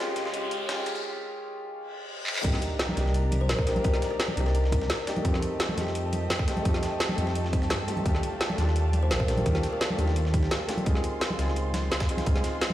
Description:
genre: liquid drum and bass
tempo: 171 BPM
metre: 4/4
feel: straight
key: C dorian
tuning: A4 = 440 Hz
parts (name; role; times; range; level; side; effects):
- warm baby grand piano; accompaniment; 0.0-12.7 s; Ab3 to Ab4; -33 LUFS; equal; ping-pong delay
- muted chamber string section; sustained chords; 0.0-12.7 s; D5 to C6; -38 LUFS; right 1 dB; sidechain pumping
- riser, reverse cymbal and sub drop; sound effects; 0.0-3.8 s; none; -36 LUFS; left 1 dB; none
- dark detuned saw bass; bass; 0.2-12.4 s; Bb1 to G2; -27 LUFS; equal; none
- drum and bass drum kit; drums; 0.2-12.7 s; crash cymbal, handclaps, hi-hat, snare drum; -32 LUFS; equal; high-pass filter on hats, high-pass filter on snare, high-pass filter on cymbals, high-pass filter on room
- dusty soul sampler-style drum kit; drums; 0.2-12.7 s; hi-hat, snare drum; -38 LUFS; equal; high-pass filter on hats, high-pass filter on snare
- electronic kick drum; drums; 2.4-12.3 s; none; -27 LUFS; equal; none
- congas; percussion; 2.9-12.7 s; none; -36 LUFS; equal; none
- kalimba; melody; 3.4-4.8, 9.0-10.3 s; G4 to C5; -35 LUFS; left 1 dB; ping-pong delay
room: moderate lush hall reverb, RT60 1.7 s, digital ambience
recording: played on a big sound system in a bare room, large studio reverb, high-pass filter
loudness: -24 LUFS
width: side -13 dB against mid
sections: 0.0-2.4 A section; 2.4-12.7 B section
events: build-up 0.0-2.4; riser 0.0-1.0; filter sweep 0.0-2.4; break 1.0-2.4; reverse cymbal 1.9-2.4; drum fill 2.3; drop 2.4-12.7; impact 2.4-3.8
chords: 0.0 Dbmaj9; 2.4 Cm9; 5.2 F9; 8.1 Ebmaj9#11; 10.9 Dbmaj9

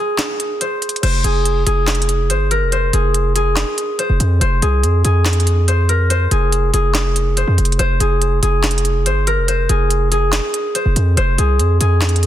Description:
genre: hip hop, trap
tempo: 142 BPM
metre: 4/4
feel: half-time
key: F minor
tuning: A4 = 441 Hz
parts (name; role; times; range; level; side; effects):
- concert harp; melody; 0.0-12.3 s; Ab4 to C5; -19 LUFS; left 1 dB; none
- trap drum kit; drums; 0.2-12.3 s; crash cymbal, handclaps, hi-hat, snare drum; -21 LUFS; right 1 dB; none
- distorted 808-style bass; bass; 1.0-12.3 s; F1 to F2; -15 LUFS; equal; distortion
room: digital ambience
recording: dense, heavily limited modern master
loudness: -14 LUFS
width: side -12 dB against mid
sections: 0.0-1.0 A section; 1.0-12.3 B section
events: break 0.0-1.0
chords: 0.0 Fm (rootless); 1.0 Fm

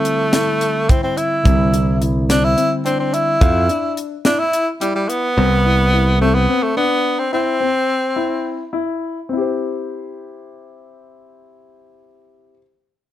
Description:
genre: progressive instrumental, band music in an uneven meter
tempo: 214 BPM (eighths)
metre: 7/8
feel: straight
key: C major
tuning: A4 = 440 Hz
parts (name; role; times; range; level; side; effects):
- breathy tenor saxophone; melody; 0.0-8.7 s; G3 to E4; -17 LUFS; equal; none
- overdriven tine electric piano; accompaniment; 0.0-3.4 s; D3 to E4; -23 LUFS; right 2 dB; none
- dark baby grand piano; arpeggios; 0.0-12.6 s; C4 to C5; -23 LUFS; left 5 dB; none
- tight funk drum kit; drums; 0.1-5.2 s; hi-hat, kick drum, snare drum; -17 LUFS; equal; none
- modern bright picked electric bass; bass; 1.5-6.5 s; C2 to F2; -16 LUFS; equal; none
room: light reverb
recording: none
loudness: -15 LUFS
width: side -12 dB against mid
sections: 0.0-9.3 A section; 9.3-13.1 B section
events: none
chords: 0.0 Cadd9; 3.4 Dmadd9/F; 5.4 Cadd9; 7.3 C

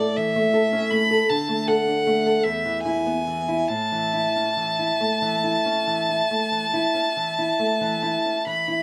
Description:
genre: romantic duo for violin and classical guitar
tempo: 45-55 BPM (dotted quarters)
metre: 12/8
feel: rubato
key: A major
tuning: A4 = 440 Hz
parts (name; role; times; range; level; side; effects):
- rich violin; melody; 0.0-8.8 s; D5 to B5; -26 LUFS; equal; none
- nylon-string guitar; accompaniment; 0.0-8.8 s; E2 to A4; -25 LUFS; equal; none
room: light reverb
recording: none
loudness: -22 LUFS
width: mono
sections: 0.0-8.8 A section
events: none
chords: 0.0 A; 1.3 D; 2.4 E; 3.7 A

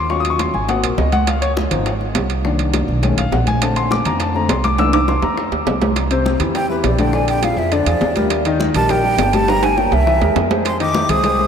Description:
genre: Afro-Cuban jazz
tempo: 205 BPM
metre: 4/4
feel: straight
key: unclear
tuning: A4 = 440 Hz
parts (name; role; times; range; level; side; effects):
- warm grand piano; accompaniment; 0.0-11.5 s; C3 to E6; -19 LUFS; left 4 dB; none
- upright bass; bass; 0.0-11.5 s; G1 to F2; -20 LUFS; right 1 dB; none
- bongos; percussion; 0.1-11.5 s; none; -26 LUFS; left 4 dB; none
- congas; percussion; 0.1-11.5 s; none; -26 LUFS; right 1 dB; none
- timbales; percussion; 0.2-11.4 s; none; -24 LUFS; right 9 dB; none
- breathy mellow silver concert flute; melody; 6.6-11.5 s; B4 to Eb6; -18 LUFS; right 2 dB; tape echo
room: wet huge ambient reverb, RT60 7.9 s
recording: in a vast, echoing space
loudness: -14 LUFS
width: side -7 dB against mid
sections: 0.0-6.0 A section; 6.0-11.5 A section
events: grand piano solo 0.0-6.0; drum fill 4.8-6.0, 9.5-10.7; flute solo 6.0-11.5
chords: 0.1 Ebm7; 0.7 Ab9; 1.3 Dbmaj9; 2.4 Cm9; 3.0 B13; 3.6 Bbmaj9; 4.8 C13; 6.0 Cadd9; 7.1 Bb7; 8.3 Eb; 9.5 Gdim; 10.1 C7alt; 10.7 Fm7

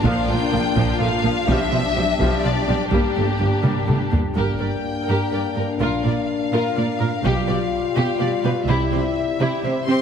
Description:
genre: cinematic, epic orchestral film score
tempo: 125 BPM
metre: 3/4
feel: straight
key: G dorian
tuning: A4 = 441 Hz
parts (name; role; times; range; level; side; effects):
- warm symphonic violin section; melody; 0.0-10.0 s; G4 to C6; -27 LUFS; left 4 dB; none
- rich symphonic violin section; second line; 0.0-10.0 s; D4 to D5; -26 LUFS; left 3 dB; none
- mellow French horn section; sustained chords; 0.0-9.9 s; G3 to F4; -26 LUFS; left 5 dB; none
- clear chamber double bass section; bass; 0.0-8.9 s; G1 to C2; -26 LUFS; right 4 dB; none
- rich symphonic cello section; bass; 0.0-10.0 s; G2 to C4; -24 LUFS; right 3 dB; none
- taiko ensemble; drums; 0.0-8.2 s; none; -25 LUFS; equal; none
- rich symphonic viola section; accompaniment; 0.1-10.0 s; F3 to Bb4; -27 LUFS; right 1 dB; none
- warm trombone section; sustained chords; 9.9-10.0 s; C3; -25 LUFS; right 3 dB; none
room: wet scoring stage reverb, RT60 1.8 s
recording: heavily compressed radio sound, multiband compression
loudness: -18 LUFS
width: side -7 dB against mid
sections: 0.0-4.4 A section; 4.4-10.0 B section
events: drum fill 3.6-4.4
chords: 0.0 Bb; 1.5 G7/B; 2.9 Gm; 5.8 Bb; 7.2 G7/B; 8.7 C

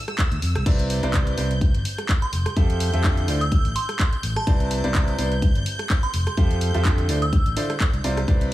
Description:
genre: piano house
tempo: 126 BPM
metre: 4/4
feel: swing 55% on 16ths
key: unclear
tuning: A4 = 440 Hz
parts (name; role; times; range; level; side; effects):
- string machine, violins; sustained chords; 0.0-8.5 s; B5 to G6; -34 LUFS; equal; ensemble chorus, sidechain pumping
- house drum kit; drums; 0.1-8.5 s; crash cymbal, handclaps, hi-hat, rim click; -29 LUFS; equal; none
- electronic kick drum; drums; 0.2-8.4 s; none; -20 LUFS; equal; none
- fingered electric bass; bass; 0.3-8.5 s; F1 to F2; -24 LUFS; equal; sidechain pumping
- clear concert grand piano; riff; 0.7-8.5 s; C3 to E5; -27 LUFS; right 1 dB; vintage 12-bit sampler grit, sidechain pumping, tape echo
- glassy synth bell; melody; 2.2-7.5 s; A5 to E6; -31 LUFS; right 2 dB; chorus, tape echo
room: digital ambience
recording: small room ambience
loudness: -19 LUFS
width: side -15 dB against mid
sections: 0.0-8.5 A section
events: none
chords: 0.0 Dm9; 0.7 Cmaj9; 2.3 Fmaj9; 3.3 Dsus2; 4.5 Cmaj9; 6.1 Fmaj9; 7.1 Dm9

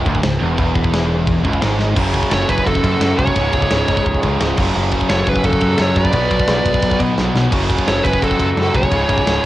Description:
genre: heavy metal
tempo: 173 BPM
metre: 4/4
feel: straight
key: unclear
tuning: A4 = 440 Hz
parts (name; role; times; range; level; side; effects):
- distorted electric guitar; riff; 0.0-9.5 s; C#2 to B3; -23 LUFS; left 5 dB; distortion, cassette tape
- distorted electric guitar; riff; 0.0-9.5 s; C#2 to B3; -22 LUFS; right 5 dB; overdrive, cassette tape
- distorted electric guitar; riff; 0.0-9.5 s; C#2 to B3; -23 LUFS; equal; distortion, cassette tape
- growling picked electric bass; bass; 0.0-9.5 s; C#1 to B2; -21 LUFS; equal; overdrive
- tight metal drum kit; drums; 0.1-9.4 s; crash cymbal, kick drum, ride cymbal, snare drum; -20 LUFS; equal; cassette tape
- high-gain lead guitar; melody; 2.3-9.5 s; A4 to D5; -20 LUFS; right 1 dB; distortion, cassette tape, tape echo
- high-gain lead guitar; second line; 2.3-9.5 s; F#4 to B4; -26 LUFS; right 1 dB; distortion, cassette tape
room: little or no reverb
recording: home recording on cassette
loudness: -14 LUFS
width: side -15 dB against mid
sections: 0.0-2.0 A section; 2.0-9.5 B section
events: drum fill 1.8, 7.2-7.5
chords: 0.0 C#m; 2.0 F#m; 3.4 C#5; 4.6 F#m; 6.1 Bm; 7.5 F#m; 8.9 C#5

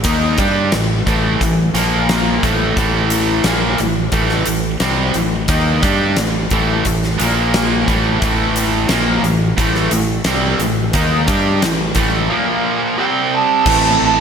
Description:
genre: hard rock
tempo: 88 BPM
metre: 4/4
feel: straight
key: unclear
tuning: A4 = 440 Hz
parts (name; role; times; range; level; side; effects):
- distorted electric guitar; riff; 0.0-14.2 s; A2 to G4; -18 LUFS; right 8 dB; overdrive
- growling fingered electric bass; bass; 0.0-14.2 s; A1 to G2; -20 LUFS; left 1 dB; overdrive
- huge arena drum kit; drums; 0.0-13.8 s; crash cymbal, hi-hat, kick drum, snare drum; -20 LUFS; left 1 dB; none
- cranked stack guitar; riff; 0.1-14.2 s; A2 to G4; -20 LUFS; left 9 dB; overdrive, analog chorus
- smooth overdriven lead guitar; melody; 13.0-14.2 s; G5 to A5; -15 LUFS; right 7 dB; none
- overdriven tonewheel organ; sustained chords; 13.6-14.2 s; A3 to B4; -27 LUFS; equal; none
- raw garage guitar; riff; 13.7-14.2 s; A2 to E4; -22 LUFS; right 2 dB; overdrive, analog chorus
room: moderate lush hall reverb, RT60 3.0 s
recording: bright 1980s-style digital production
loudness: -13 LUFS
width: side -7 dB against mid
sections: 0.0-13.7 A section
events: none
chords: 0.0 A5; 1.7 Bb5; 2.4 Am; 7.2 Bb5; 7.9 Am; 12.3 Bb5; 13.0 C5; 13.7 Am

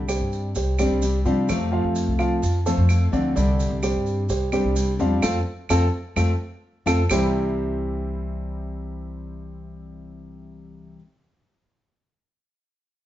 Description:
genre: latin, Cuban son and guajira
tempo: 128 BPM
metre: 4/4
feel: straight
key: C major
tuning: A4 = 443 Hz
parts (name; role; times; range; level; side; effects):
- picked steel-string acoustic guitar; accompaniment; 0.0-11.0 s; C3 to G4; -26 LUFS; left 3 dB; none
- upright bass; bass; 0.0-10.9 s; C2 to C3; -24 LUFS; equal; none
- warm concert grand piano; arpeggios; 0.1-11.0 s; C3 to F5; -26 LUFS; right 2 dB; none
- claves; percussion; 0.1-7.2 s; none; -32 LUFS; right 1 dB; none
- maracas; percussion; 0.1-7.2 s; none; -37 LUFS; right 4 dB; none
room: moderate stone room reverb, RT60 0.9 s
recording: band playing live in one room, nothing above 7.6 kHz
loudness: -20 LUFS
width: side -13 dB against mid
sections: 0.0-7.1 A section; 7.1-10.8 B section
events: band accent 5.2-7.1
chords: 0.0 Csus2; 1.5 F; 3.4 Csus2; 5.2 F; 7.1 C

